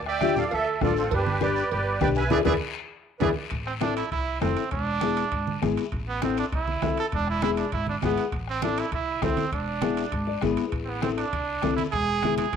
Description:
latin, cumbia; 200 BPM; 4/4; straight; A harmonic minor from 3.5 s; A4 = 439 Hz
upright bass; bass; 0.0-12.6 s; E1 to E2; -32 LUFS; equal
musette accordion; melody; 0.1-3.3 s; F4 to G#5; -27 LUFS; right 3 dB; cassette tape
bright trumpet; second line; 0.1-12.6 s; B3 to D5; -29 LUFS; right 7 dB; cassette tape
bombo; percussion; 0.1-12.6 s; -34 LUFS; left 2 dB
nylon-string guitar; accompaniment; 0.2-12.5 s; B3 to D5; -27 LUFS; left 10 dB; cassette tape
congas; percussion; 0.2-12.6 s; -32 LUFS; right 8 dB
guiro; percussion; 0.2-12.6 s; -41 LUFS; left 11 dB
cowbell and timbales; percussion; 0.5-12.6 s; -37 LUFS; right 12 dB
moderate spring reverb, RT60 1.3 s, small room ambience; home recording on cassette; -23 LUFS; side -7 dB against mid
0.0-3.5 A section; 3.5-12.6 B section
band accent 2.3-3.5; nylon-string guitar fill 2.6-3.5, 10.1-10.7; trumpet solo 3.5-12.6; drum fill 12.2-12.6
0.0 Dm; 1.1 G; 2.3 E7; 3.5 Am; 4.7 E7; 5.9 Am; 7.1 E; 8.3 Am; 9.5 E7; 10.7 Am; 11.9 E
0.22 0.52 0.82 | 1.12 1.42 1.72 2.02 | 2.32 2.62 2.92 3.22 | 3.52 3.82 4.12 4.42 | 4.72 5.02 5.32 5.62 | 5.92 6.22 6.52 6.82 | 7.12 7.42 7.73 8.03 | 8.33 8.63 8.93 9.23 | 9.53 9.83 10.13 10.43 | 10.73 11.03 11.34 11.64 | 11.94 12.24 12.54

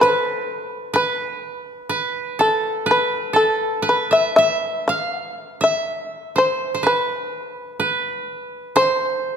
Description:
japanese traditional, Japanese chamber music; 62 BPM; 2/4; uneven beats, rubato; A4 = 439 Hz
shamisen; melody; 0.0-9.4 s; A4 to F5; -19 LUFS; left 1 dB
koto; second line; 0.0-9.4 s; A4 to F5; -22 LUFS; right 2 dB
moderate concert hall reverb, RT60 2.4 s; -18 LUFS; side -7 dB against mid
0.0-9.4 A section
0.05 | 0.98 1.93 | 2.89 3.87 | 4.88 5.88 | 6.85 7.80 | 8.76

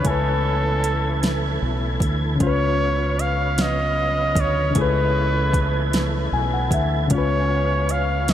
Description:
slow six-eight R&B; 51 BPM (dotted quarters); 6/8; straight; A4 = 444 Hz
clear flugelhorn; melody; 0.0-8.3 s; A4 to E#5; -24 LUFS; right 1 dB; tape echo
reed electric piano; accompaniment; 0.0-8.3 s; C#3 to G#5; -26 LUFS; left 5 dB
tonewheel organ; sustained chords; 0.0-8.3 s; C#3 to G#5; -29 LUFS; right 1 dB; chorus vibrato, slow rotary speaker
smooth R&B drum kit; drums; 0.0-8.3 s; hi-hat, kick drum, snare drum; -26 LUFS; equal; overdrive
fingered electric bass; bass; 0.1-8.3 s; B1 to D2; -23 LUFS; right 1 dB
moderate huge ambient reverb, RT60 8.4 s; dreamy mix soaked in reverb; -18 LUFS; side -11 dB against mid
0.0-8.3 A section
reed electric piano fill 5.9-7.1
0.0 B13sus4; 2.4 C#7; 4.8 B13sus4; 7.1 C#7
| 0.05 1.22 | 2.40 3.58 | 4.75 5.93 | 7.11 8.28

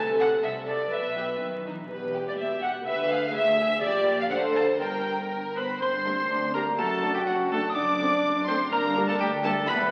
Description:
cinematic, playful, whimsical film cue; 124 BPM; 2/4; straight; E minor, G minor from 3.8 s; A4 = 441 Hz
dark studio violin section; second line; 0.0-9.5 s; D4 to A5; -31 LUFS; equal
dark studio viola section; accompaniment; 0.0-9.5 s; G3 to B4; -32 LUFS; equal
dark studio cello section; bass; 0.0-9.9 s; D2 to E3; -39 LUFS; equal
warm studio double bass section; bass; 0.0-9.9 s; E1 to D2; -43 LUFS; equal
rich studio violin section; melody; 0.2-9.8 s; D#4 to D6; -34 LUFS; equal
xylophone with rubber mallets; melody; 5.6-9.9 s; F#5 to Eb6; -33 LUFS; equal
warm cor anglais; second line; 5.6-9.9 s; F#4 to D5; -31 LUFS; equal
mellow French horn section; sustained chords; 5.6-9.8 s; F#3 to D4; -36 LUFS; equal
mellow bassoon; accompaniment; 6.3-9.9 s; D4 to F#4; -34 LUFS; equal
wet scoring stage reverb, RT60 1.6 s; very old 78 rpm record, vinyl crackle; -26 LUFS; mono
0.0-5.8 A section; 5.8-9.9 B section
0.0 Am/C; 0.9 E5/B; 1.4 B; 1.9 Em; 2.9 E7/D; 3.8 Gm/Bb; 4.3 D7(no3); 4.8 Gm; 6.8 D/F#; 7.8 D7/F#; 8.7 Gm
0.42 | 0.91 1.41 | 1.90 2.39 | 2.87 3.35 | 3.83 4.31 | 4.81 5.31 | 5.81 6.30 | 6.78 7.27 | 7.76 8.24 | 8.72 9.21 | 9.68

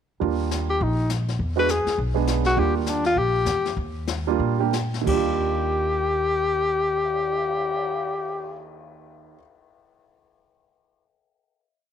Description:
jazz, small-group swing and bop; 171-204 BPM; 4/4; swing 61% on 8ths; Eb major; A4 = 440 Hz
warm grand piano; accompaniment; 0.2-9.4 s; Eb2 to G#4; -26 LUFS; right 13 dB
upright bass; bass; 0.2-9.3 s; Bb1 to Bb2; -27 LUFS; equal
jazz brush drum kit; drums; 0.2-7.8 s; brushed snare drum, crash cymbal, cymbal swell, hi-hat, kick drum, snare drum; -33 LUFS; left 6 dB
breathy alto saxophone; melody; 0.7-8.6 s; Bb3 to B4; -23 LUFS; left 3 dB
light reverb, small room ambience; 1960s-style stereo with parts hard left and right; -21 LUFS; side -8 dB against mid
0.2-5.1 A section; 5.1-7.9 final chord
slowing down 2.6-5.1
0.2 Ebmaj7; 1.4 E7; 2.6 Ebmaj7
| 0.20 0.49 0.79 1.08 | 1.38 1.67 1.96 2.26 | 2.55 2.85 3.15 3.45 | 3.75 4.07 4.39 4.72 | 5.07 5.42 5.77 6.12 | 6.47 6.82 7.17 7.52

